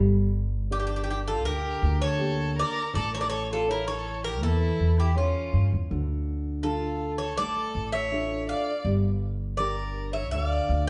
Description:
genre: greek folk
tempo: 81 BPM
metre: 4/4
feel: straight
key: unclear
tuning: A4 = 441 Hz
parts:
  - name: nylon-string guitar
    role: accompaniment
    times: 0.0-10.9 s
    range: D3 to E5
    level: -35 LUFS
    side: equal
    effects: none
  - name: upright bass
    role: bass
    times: 0.0-10.9 s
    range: G1 to G2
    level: -30 LUFS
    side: equal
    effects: none
  - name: Greek bouzouki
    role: melody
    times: 0.7-10.9 s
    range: F4 to F5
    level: -32 LUFS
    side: equal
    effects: none
  - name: rich violin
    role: second line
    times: 0.7-10.8 s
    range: C#4 to D5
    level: -36 LUFS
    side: equal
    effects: none
room: wet stone room reverb, RT60 1.4 s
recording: band playing live in one room, nothing above 10.3 kHz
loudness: -27 LUFS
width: mono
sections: 0.0-10.9 A section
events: none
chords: 0.0 Gm; 2.9 A; 5.9 Dm; 8.9 Gm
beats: 0.72 1.46 2.20 | 2.94 3.68 4.42 5.16 | 5.90 6.64 7.38 8.12 | 8.85 9.59 10.33

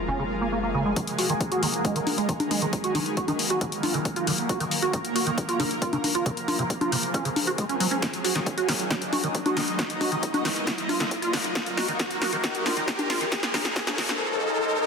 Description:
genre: uplifting trance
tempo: 136 BPM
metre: 4/4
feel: straight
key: Eb minor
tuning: A4 = 439 Hz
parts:
  - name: shimmering ambient pad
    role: sustained chords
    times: 0.0-14.9 s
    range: Eb3 to Eb5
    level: -29 LUFS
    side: equal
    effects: chorus, built-in reverb, phaser, sidechain pumping
  - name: tight sequencer bass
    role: bass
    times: 0.0-0.9 s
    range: Gb1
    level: -35 LUFS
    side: left 1 dB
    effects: sidechain pumping
  - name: liquid acid bass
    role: arpeggios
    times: 0.1-14.0 s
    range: C3 to Gb4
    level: -28 LUFS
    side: right 3 dB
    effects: analog chorus, sidechain pumping, digital delay
  - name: electronic kick drum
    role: drums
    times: 1.0-13.8 s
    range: none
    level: -31 LUFS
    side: left 1 dB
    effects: high-pass filter on kick
  - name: punchy analog drum machine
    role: drums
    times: 1.0-14.2 s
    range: congas, hi-hat, snare drum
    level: -27 LUFS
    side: left 3 dB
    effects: sidechain pumping on hats, sidechain pumping on perc
  - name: riser and swell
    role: sound effects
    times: 4.5-14.9 s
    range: none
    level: -33 LUFS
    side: left 1 dB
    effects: none
room: moderate digital room reverb, RT60 0.9 s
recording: dense, heavily limited modern master, high-pass filter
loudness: -23 LUFS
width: side -5 dB against mid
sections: 1.0-14.9 A section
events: build-up 1.0-14.9; riser 4.5-14.9; drum fill 8.0-14.2; swell 14.2-14.9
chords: 0.1 Gbadd9; 1.0 Ebm; 1.8 Abm; 2.7 Ebm; 3.6 Bb; 4.5 Ebm; 5.4 Bbm; 6.3 Fm; 7.1 Gbadd9; 8.0 Ebm; 8.9 Abm; 9.8 Ebm; 10.7 Bb; 11.6 Ebm; 12.4 Bbm; 13.3 Fm; 14.2 Gbadd9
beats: 0.08 0.52 | 0.96 1.41 1.85 2.29 | 2.73 3.17 3.61 4.05 | 4.50 4.94 5.38 5.82 | 6.26 6.70 7.14 7.58 | 8.02 8.46 8.91 9.35 | 9.79 10.23 10.67 11.11 | 11.55 11.99 12.44 12.88 | 13.32 13.76 14.20 14.64

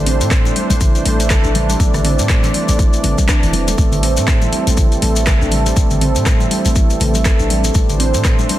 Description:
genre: afro house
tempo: 121 BPM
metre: 4/4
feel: swing 58% on 16ths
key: A minor pentatonic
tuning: A4 = 440 Hz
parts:
  - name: warm analog pad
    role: sustained chords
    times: 0.0-8.6 s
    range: E3 to D5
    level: -24 LUFS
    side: right 1 dB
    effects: chorus, vintage 12-bit sampler grit, sidechain pumping
  - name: warm 808-style bass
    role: bass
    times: 0.0-8.4 s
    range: E1 to A2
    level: -18 LUFS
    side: equal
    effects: tube saturation, sidechain pumping
  - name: handpan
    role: arpeggios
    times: 0.1-8.5 s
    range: E3 to A4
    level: -20 LUFS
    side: right 1 dB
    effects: vintage 12-bit sampler grit, sidechain pumping, digital delay
  - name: afro-pop drum kit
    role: drums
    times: 0.1-8.6 s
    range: handclaps, hi-hat, rim click, toms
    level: -21 LUFS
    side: left 1 dB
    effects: studio reverb
  - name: congas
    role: percussion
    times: 0.2-8.6 s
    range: none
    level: -24 LUFS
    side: left 1 dB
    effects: none
  - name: shekere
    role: percussion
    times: 0.2-8.5 s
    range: none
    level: -27 LUFS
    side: left 6 dB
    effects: none
  - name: electronic kick drum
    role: drums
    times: 0.3-8.4 s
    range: none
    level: -15 LUFS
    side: equal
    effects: studio reverb
room: light reverb, small room ambience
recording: dense, heavily limited modern master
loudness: -12 LUFS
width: side -14 dB against mid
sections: 0.0-8.6 A section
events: none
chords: 0.0 Cadd9/A; 3.8 Am7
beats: 0.31 0.81 1.30 | 1.80 2.29 2.79 3.29 | 3.78 4.28 4.77 5.27 | 5.77 6.26 6.76 7.25 | 7.75 8.25

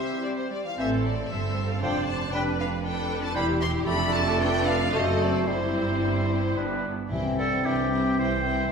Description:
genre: quick classical-period movement for symphony orchestra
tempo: 108-119 BPM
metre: 3/4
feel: rubato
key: C major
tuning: A4 = 440 Hz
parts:
  - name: rich chamber violin section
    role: melody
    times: 0.0-8.7 s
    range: C5 to C6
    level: -32 LUFS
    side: left 4 dB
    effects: none
  - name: clear oboe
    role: second line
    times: 0.0-8.7 s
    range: G4 to D5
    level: -32 LUFS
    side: right 2 dB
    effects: none
  - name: mellow clarinet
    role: second line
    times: 0.0-8.7 s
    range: C4 to F#4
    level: -32 LUFS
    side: left 2 dB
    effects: none
  - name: rich chamber violin section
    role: second line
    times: 0.0-8.7 s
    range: E4 to D5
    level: -36 LUFS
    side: left 2 dB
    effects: none
  - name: mellow bassoon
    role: accompaniment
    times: 0.0-8.7 s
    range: D3 to A3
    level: -32 LUFS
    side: right 2 dB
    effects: none
  - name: warm studio viola section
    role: accompaniment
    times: 0.0-8.7 s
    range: C3 to C5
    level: -31 LUFS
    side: equal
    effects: none
  - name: clear chamber double bass section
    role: bass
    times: 0.8-8.7 s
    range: E1 to C2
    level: -32 LUFS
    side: right 3 dB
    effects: none
  - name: rich chamber cello section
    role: bass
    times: 0.8-8.7 s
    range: C2 to A2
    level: -31 LUFS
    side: right 3 dB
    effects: none
  - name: mellow French horn section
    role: sustained chords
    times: 7.1-8.7 s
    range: E3 to C4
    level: -30 LUFS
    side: left 2 dB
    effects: none
  - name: timpani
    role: percussion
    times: 7.1-7.9 s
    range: C3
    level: -36 LUFS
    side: equal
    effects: none
room: wet recital hall reverb, RT60 1.5 s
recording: recorded in a church or concert hall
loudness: -23 LUFS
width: side -6 dB against mid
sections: 0.0-7.1 A section; 7.1-8.7 B section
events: none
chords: 0.0 C; 0.8 Am; 1.8 Dm7/F; 2.3 G7/F; 3.4 C/E; 3.9 Dm/F; 4.9 F#dim7; 5.5 C/G; 6.6 G; 7.1 C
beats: 0.24 | 0.78 1.30 1.82 | 2.34 2.84 3.35 | 3.87 4.39 4.92 | 5.46 6.02 6.57 | 7.12 7.65 8.19 | 8.72

